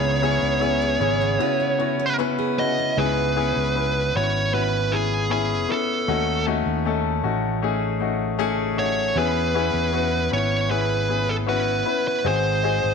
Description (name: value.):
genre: pop ballad.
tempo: 78 BPM.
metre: 4/4.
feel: straight.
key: C# minor.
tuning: A4 = 441 Hz.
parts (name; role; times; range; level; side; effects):
fuzz lead guitar; melody; 0.0-12.9 s; G#4 to D#5; -23 LUFS; right 3 dB; distortion.
clear baby grand piano; accompaniment; 0.0-12.9 s; G#2 to B4; -24 LUFS; left 8 dB; none.
picked steel-string acoustic guitar; arpeggios; 0.0-3.6 s; C#3 to G#4; -29 LUFS; right 12 dB; none.
fingered electric bass; bass; 0.0-12.9 s; G#1 to E2; -26 LUFS; right 2 dB; none.
room: moderate echo chamber reverb, RT60 1.6 s, small room ambience.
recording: 1960s-style stereo with parts hard left and right.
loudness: -20 LUFS.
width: side -5 dB against mid.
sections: 0.0-3.0 A section; 3.0-12.9 A section.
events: none.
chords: 0.0 C#m7; 6.1 D#m7b5; 9.2 C#m7; 12.3 G#7.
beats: 0.61 1.40 2.19 | 2.98 3.76 4.54 5.31 | 6.08 6.86 7.63 8.40 | 9.16 9.93 10.71 11.48 | 12.26.